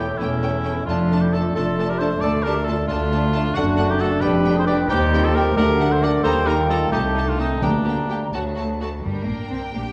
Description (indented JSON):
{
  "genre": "quick classical-period movement for symphony orchestra",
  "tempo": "89 BPM (dotted quarters)",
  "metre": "6/8",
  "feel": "straight",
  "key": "D minor, G minor from 3.6 s",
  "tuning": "A4 = 440 Hz",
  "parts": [
    { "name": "warm studio violin section", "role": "melody", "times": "0.0-9.9 s", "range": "F#5 to Bb5", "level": "-36 LUFS", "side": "equal", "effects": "none" },
    { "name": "large flute ensemble", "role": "second line", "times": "0.0-8.8 s", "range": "C#5 to Bb5", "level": "-32 LUFS", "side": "equal", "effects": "none" },
    { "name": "mellow clarinet", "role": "second line", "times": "0.0-8.3 s", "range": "Bb3 to B4", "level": "-30 LUFS", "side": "equal", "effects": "none" },
    { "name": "warm oboe", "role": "second line", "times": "0.0-8.3 s", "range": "D4 to D5", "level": "-27 LUFS", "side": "equal", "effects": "none" },
    { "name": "warm studio violin section", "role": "second line", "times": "0.0-9.9 s", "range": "C4 to Bb4", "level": "-34 LUFS", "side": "equal", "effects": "none" },
    { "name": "mellow bassoon", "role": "accompaniment", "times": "0.0-8.8 s", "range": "F#3 to D4", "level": "-32 LUFS", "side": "equal", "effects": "none" },
    { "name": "warm chamber viola section", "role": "accompaniment", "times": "0.0-9.9 s", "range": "G3 to D4", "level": "-34 LUFS", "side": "equal", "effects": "none" },
    { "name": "dark French horn section", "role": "sustained chords", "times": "0.0-8.8 s", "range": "F#3 to G4", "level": "-32 LUFS", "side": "equal", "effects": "none" },
    { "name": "rich chamber cello section", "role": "bass", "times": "0.0-9.8 s", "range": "C2 to C4", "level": "-27 LUFS", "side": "equal", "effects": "none" },
    { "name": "rich studio double bass section", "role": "bass", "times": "0.0-9.9 s", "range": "E1 to Eb2", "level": "-28 LUFS", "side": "equal", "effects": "none" },
    { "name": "timpani", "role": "percussion", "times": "7.6-9.7 s", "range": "G2 to D3", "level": "-30 LUFS", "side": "equal", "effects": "none" }
  ],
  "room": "wet recital hall reverb, RT60 1.3 s",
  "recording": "recorded in a church or concert hall",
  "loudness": "-20 LUFS",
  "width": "mono",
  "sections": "0.0-9.1 A section",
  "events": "none",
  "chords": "0.0 A7/E; 0.9 Dm/F; 2.2 Dm; 3.6 D/F#; 4.2 G7/F; 4.9 Cm/Eb; 5.6 D; 6.2 Eb; 6.9 Adim/C; 7.6 Gm/D; 8.3 D; 9.1 Gm"
}